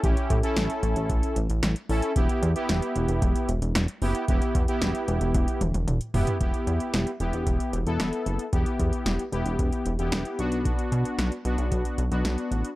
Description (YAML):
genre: synth-pop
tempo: 113 BPM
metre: 4/4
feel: straight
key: E dorian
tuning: A4 = 440 Hz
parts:
  - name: analog synth brass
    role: accompaniment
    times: 0.0-12.7 s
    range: B3 to A4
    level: -29 LUFS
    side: equal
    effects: chorus
  - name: chorused synth bass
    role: bass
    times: 0.0-12.6 s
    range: E1 to B2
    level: -26 LUFS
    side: equal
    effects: none
  - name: electro analog drum machine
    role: drums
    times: 0.0-12.8 s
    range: hi-hat, kick drum, snare drum, toms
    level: -27 LUFS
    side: equal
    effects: overdrive
room: little or no reverb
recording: dry, gritty hardware recording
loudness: -23 LUFS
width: side -17 dB against mid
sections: 0.0-6.4 A section; 6.4-12.8 B section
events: drum fill 5.3-6.4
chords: 0.0 A; 2.2 Em; 10.4 Bm